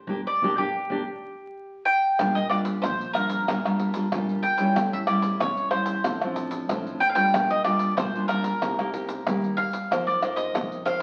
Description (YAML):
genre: samba and choro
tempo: 93 BPM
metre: 4/4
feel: straight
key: Bb major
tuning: A4 = 441 Hz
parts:
  - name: bowl-back mandolin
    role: melody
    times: 0.0-11.0 s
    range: G4 to G5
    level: -28 LUFS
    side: equal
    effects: none
  - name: nylon-string guitar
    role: accompaniment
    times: 0.1-11.0 s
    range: A2 to C5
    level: -30 LUFS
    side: equal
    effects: none
  - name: upright bass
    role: bass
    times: 0.1-11.0 s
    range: G1 to F2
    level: -41 LUFS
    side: equal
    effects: none
  - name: surdo, egg shaker, pandeiro and tamborim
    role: percussion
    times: 0.1-11.0 s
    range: none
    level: -32 LUFS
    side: equal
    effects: none
room: wet studio reverb, RT60 0.9 s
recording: very old 78 rpm record, vinyl crackle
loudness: -25 LUFS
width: mono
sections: 0.0-2.2 A section; 2.2-11.0 B section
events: band accent 0.0-2.2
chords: 0.0 Gm; 2.2 Bb6; 4.8 A7; 6.1 Dm7/A; 7.3 Gm7/Bb; 8.6 Cm7; 9.9 F7sus4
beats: 0.26 0.91 1.55 | 2.19 2.84 3.48 4.12 | 4.77 5.41 6.05 6.69 | 7.34 7.98 8.62 9.26 | 9.91 10.55